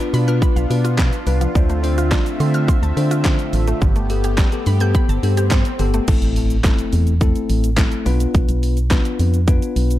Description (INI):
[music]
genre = dance-pop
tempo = 106 BPM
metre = 4/4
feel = straight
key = A minor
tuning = A4 = 440 Hz
[part]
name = bell-like tine electric piano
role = accompaniment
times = 0.0-10.0 s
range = A3 to C5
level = -24 LUFS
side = left 4 dB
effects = sidechain pumping
[part]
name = soft supersaw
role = sustained chords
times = 0.0-6.1 s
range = D3 to E5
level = -26 LUFS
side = right 1 dB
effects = sidechain pumping
[part]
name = pop drum kit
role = drums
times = 0.0-10.0 s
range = crash cymbal, handclaps, hi-hat, kick drum, shaker, snare drum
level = -18 LUFS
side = equal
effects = none
[part]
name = mallet-like synth pluck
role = arpeggios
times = 0.1-6.0 s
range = D3 to G6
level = -29 LUFS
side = right 2 dB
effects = chorus, phaser, sidechain pumping, dub echo
[part]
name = organ-like FM bass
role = bass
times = 0.1-10.0 s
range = G1 to D3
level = -18 LUFS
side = equal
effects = sidechain pumping
[part]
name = swell and impact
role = sound effects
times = 4.8-8.3 s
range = none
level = -31 LUFS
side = equal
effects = none
[sound]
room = light reverb, digital ambience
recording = dark, warm production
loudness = -15 LUFS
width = side -14 dB against mid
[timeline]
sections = 0.0-6.1 A section; 6.1-10.0 B section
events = swell 4.8-6.1; impact 6.1-8.3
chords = 0.0 Bdim; 1.6 Dm7; 3.8 Gadd9; 6.1 Am; 8.1 Bdim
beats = 0.42 0.99 | 1.55 2.12 2.69 3.25 | 3.82 4.38 4.95 5.52 | 6.08 6.65 7.21 7.78 | 8.35 8.91 9.48